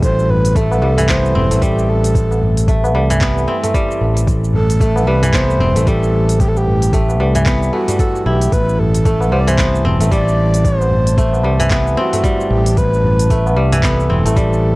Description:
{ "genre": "organic downtempo", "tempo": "113 BPM", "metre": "4/4", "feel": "swing 59% on 16ths", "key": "A minor", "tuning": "A4 = 440 Hz", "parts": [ { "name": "breathy flute-like synth lead", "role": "melody", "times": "0.0-14.8 s", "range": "F#4 to D5", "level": "-20 LUFS", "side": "equal", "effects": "chorus, tape echo" }, { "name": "airy breathy pad", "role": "sustained chords", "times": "0.0-14.8 s", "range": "E3 to A5", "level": "-26 LUFS", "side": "right 1 dB", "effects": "none" }, { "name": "kora", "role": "arpeggios", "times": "0.0-14.8 s", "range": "E3 to A4", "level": "-19 LUFS", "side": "equal", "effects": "tape echo" }, { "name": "fretless electric bass", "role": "bass", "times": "0.0-14.8 s", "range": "E1 to C2", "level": "-15 LUFS", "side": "equal", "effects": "none" }, { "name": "afro-pop drum kit", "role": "drums", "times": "0.0-14.6 s", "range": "cabasa, handclaps, hi-hat", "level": "-24 LUFS", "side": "equal", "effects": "none" }, { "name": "electronic kick drum", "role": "drums", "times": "0.0-14.5 s", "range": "none", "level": "-17 LUFS", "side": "equal", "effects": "overdrive" }, { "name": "bronze singing bowl", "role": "texture", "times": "0.0-14.8 s", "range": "none", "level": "barely audible", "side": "none", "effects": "none" }, { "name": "tabla", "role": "percussion", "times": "0.3-14.3 s", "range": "none", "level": "-24 LUFS", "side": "left 1 dB", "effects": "none" } ], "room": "little or no reverb", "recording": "dry, gritty hardware recording, cassette tape", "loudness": "-12 LUFS", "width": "side -21 dB against mid", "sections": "0.0-14.8 A section", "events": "none", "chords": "0.0 Am7" }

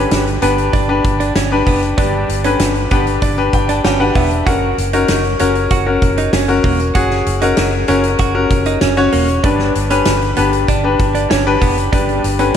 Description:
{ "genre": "piano-driven pop", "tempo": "96 BPM", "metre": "4/4", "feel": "straight", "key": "unclear", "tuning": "A4 = 440 Hz", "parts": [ { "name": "clear baby grand piano", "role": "accompaniment", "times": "0.0-12.6 s", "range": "G2 to A5", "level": "-15 LUFS", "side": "left 4 dB", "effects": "slapback echo" }, { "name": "direct-recorded clean electric guitar", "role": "riff", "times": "0.0-12.6 s", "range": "A#3 to F#4", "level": "-21 LUFS", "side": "right 8 dB", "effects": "lush chorus, slapback echo" }, { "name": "vintage muted fingered electric bass", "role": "bass", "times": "0.0-12.5 s", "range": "E1 to G1", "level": "-19 LUFS", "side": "right 1 dB", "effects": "none" }, { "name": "loose indie drum kit", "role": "drums", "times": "0.1-12.6 s", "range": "hi-hat, kick drum, snare drum", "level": "-19 LUFS", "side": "equal", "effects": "none" } ], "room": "moderate lush hall reverb, RT60 2.7 s", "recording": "big arena sound", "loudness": "-12 LUFS", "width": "side -8 dB against mid", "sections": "0.0-12.6 A section", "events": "grand piano fill 3.2-4.5", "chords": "0.0 G; 4.5 F#; 9.4 G" }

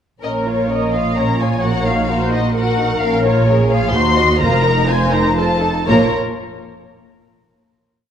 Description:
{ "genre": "quick classical-period movement for string orchestra", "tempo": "127 BPM", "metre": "3/4", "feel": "uneven beats", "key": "Bb minor", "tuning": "A4 = 436 Hz", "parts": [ { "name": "muted symphonic violin section", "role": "melody", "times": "0.2-6.1 s", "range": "Db5 to C6", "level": "-20 LUFS", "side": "left 4 dB", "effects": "none" }, { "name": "muted symphonic violin section", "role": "second line", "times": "0.2-6.1 s", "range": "Db4 to Eb5", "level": "-20 LUFS", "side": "left 1 dB", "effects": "none" }, { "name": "muted symphonic viola section", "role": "accompaniment", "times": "0.2-6.1 s", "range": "Bb3 to Eb5", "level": "-21 LUFS", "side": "right 1 dB", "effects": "none" }, { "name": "muted symphonic cello section", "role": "bass", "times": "0.2-6.2 s", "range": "Eb2 to Bb2", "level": "-22 LUFS", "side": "right 3 dB", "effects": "none" }, { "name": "muted symphonic double bass section", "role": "bass", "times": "0.2-6.1 s", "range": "F1 to Eb2", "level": "-20 LUFS", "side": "right 2 dB", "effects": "none" } ], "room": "moderate scoring stage reverb, RT60 1.9 s", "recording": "dark, warm production", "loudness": "-13 LUFS", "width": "side -8 dB against mid", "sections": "0.2-5.9 theme; 5.9-7.3 final chord", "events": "none", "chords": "0.2 Bbm; 1.6 Ebm/Bb; 3.0 Bbm; 3.9 Cdim/Eb; 4.4 F7sus4; 5.4 F7; 5.9 Bb5" }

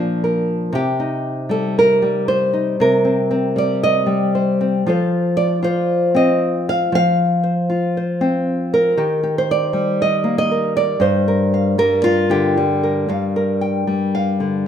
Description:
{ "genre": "folk, solo fingerstyle acoustic guitar", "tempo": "117 BPM", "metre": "4/4", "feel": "straight", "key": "G minor", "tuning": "A4 = 439 Hz", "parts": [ { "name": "nylon-string guitar", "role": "solo", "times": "0.0-14.7 s", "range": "G2 to G5", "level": "-15 LUFS", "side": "equal", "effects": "none" } ], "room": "wet large studio reverb, RT60 1.4 s", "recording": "minimal, uncompressed stereo recording", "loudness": "-15 LUFS", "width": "side -8 dB against mid", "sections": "0.0-13.1 A section; 13.1-14.7 B section", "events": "none", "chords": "0.0 Bb; 0.7 Cm7; 4.8 F; 9.0 Eb; 11.0 Gm7" }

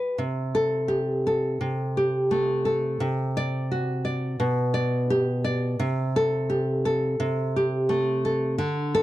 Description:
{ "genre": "romantic piece for solo classical guitar", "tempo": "86 BPM", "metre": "4/4", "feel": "rubato", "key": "unclear", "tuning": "A4 = 440 Hz", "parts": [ { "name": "nylon-string guitar", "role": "solo", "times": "0.0-9.0 s", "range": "B2 to D5", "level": "-23 LUFS", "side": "equal", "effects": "none" } ], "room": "light reverb", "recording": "dry, close 1970s-style studio recording", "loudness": "-23 LUFS", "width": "side -15 dB against mid", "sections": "0.0-9.0 A section", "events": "none", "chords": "0.2 Am7/C; 3.0 D7/C; 4.4 G/B; 5.8 Am7/C" }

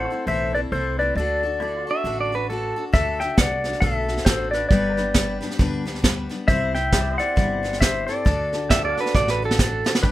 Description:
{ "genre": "honky-tonk and classic country", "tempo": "135 BPM", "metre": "4/4", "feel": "swing 60% on 8ths", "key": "unclear", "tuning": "A4 = 439 Hz", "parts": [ { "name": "pedal steel guitar", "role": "melody", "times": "0.0-10.1 s", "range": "G4 to G5", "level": "-23 LUFS", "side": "left 2 dB", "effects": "none" }, { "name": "picked steel-string acoustic guitar", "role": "accompaniment", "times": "0.0-10.1 s", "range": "G2 to C5", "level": "-29 LUFS", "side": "left 3 dB", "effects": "none" }, { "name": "pedal steel guitar", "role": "sustained chords", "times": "0.0-10.1 s", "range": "E4 to G5", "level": "-36 LUFS", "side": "equal", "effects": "none" }, { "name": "upright bass", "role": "bass", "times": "0.0-10.1 s", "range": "G1 to D2", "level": "-29 LUFS", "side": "right 1 dB", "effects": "none" }, { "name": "pedal steel guitar", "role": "second line", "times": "1.9-2.8, 8.7-9.9 s", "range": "A4 to E5", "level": "-23 LUFS", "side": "right 4 dB", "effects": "none" }, { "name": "vintage brush drum kit", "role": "drums", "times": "2.9-10.1 s", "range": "hi-hat, kick drum, snare drum", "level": "-20 LUFS", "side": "right 1 dB", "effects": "none" } ], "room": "light reverb", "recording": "rough home demo mix", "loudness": "-19 LUFS", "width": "side -15 dB against mid", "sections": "0.0-10.0 A section", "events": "drum fill 9.1-10.0", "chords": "0.0 Am; 1.2 D; 4.7 G; 6.5 C; 8.3 D" }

